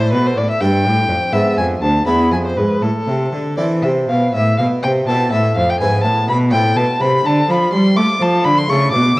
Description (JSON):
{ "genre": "classical, baroque-style sonata movement with continuo", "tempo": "83 BPM (dotted quarters)", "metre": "6/8", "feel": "straight", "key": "A minor", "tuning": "A4 = 440 Hz", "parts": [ { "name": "warm violin", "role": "melody", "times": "0.0-9.2 s", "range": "A4 to D6", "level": "-17 LUFS", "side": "left 1 dB", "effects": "none" }, { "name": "harpsichord", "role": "accompaniment", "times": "0.0-9.2 s", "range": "D2 to B4", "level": "-19 LUFS", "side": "equal", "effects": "none" }, { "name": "rich cello", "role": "bass", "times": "0.0-9.2 s", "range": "D2 to A3", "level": "-17 LUFS", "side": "equal", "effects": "transformer saturation" } ], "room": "wet recital hall reverb, RT60 1.4 s", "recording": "worn, warbling old tape, cassette tape, vinyl crackle, warbly pitch drift", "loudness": "-13 LUFS", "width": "side -20 dB against mid", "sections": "0.0-4.3 A section; 4.3-9.2 B section", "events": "none", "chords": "0.0 A5; 0.6 G; 1.3 Ddim7; 2.1 E; 2.8 Am; 5.8 E/G#; 6.5 Am; 7.2 Dm; 8.7 A", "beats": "0.61 | 1.33 2.07 | 2.82 3.58 | 4.33 5.07 | 5.80 6.52 | 7.25 7.97 | 8.69" }